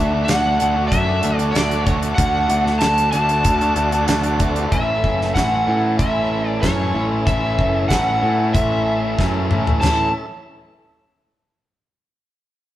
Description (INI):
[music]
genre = classic rock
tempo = 94 BPM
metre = 4/4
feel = straight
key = A major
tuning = A4 = 440 Hz
[part]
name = overdriven slide guitar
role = melody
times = 0.0-10.1 s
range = C#5 to A5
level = -20 LUFS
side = equal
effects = none
[part]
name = tonewheel organ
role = sustained chords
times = 0.0-10.3 s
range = A3 to F#5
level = -30 LUFS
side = right 1 dB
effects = overdrive
[part]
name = overdriven electric guitar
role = riff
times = 0.0-10.1 s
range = A2 to F#4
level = -23 LUFS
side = equal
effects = none
[part]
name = growling picked electric bass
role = bass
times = 0.0-10.1 s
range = F#1 to A2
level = -22 LUFS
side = equal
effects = overdrive
[part]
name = damped 70s drum kit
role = drums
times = 0.3-10.0 s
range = crash cymbal, hi-hat, kick drum, snare drum, toms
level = -21 LUFS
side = equal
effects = none
[sound]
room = moderate stone room reverb, RT60 1.4 s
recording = band playing live in one room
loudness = -16 LUFS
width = side -13 dB against mid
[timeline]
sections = 0.0-4.7 A section; 4.7-9.8 B section; 9.8-12.4 C section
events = drum fill 9.2-9.8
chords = 0.0 D; 4.7 A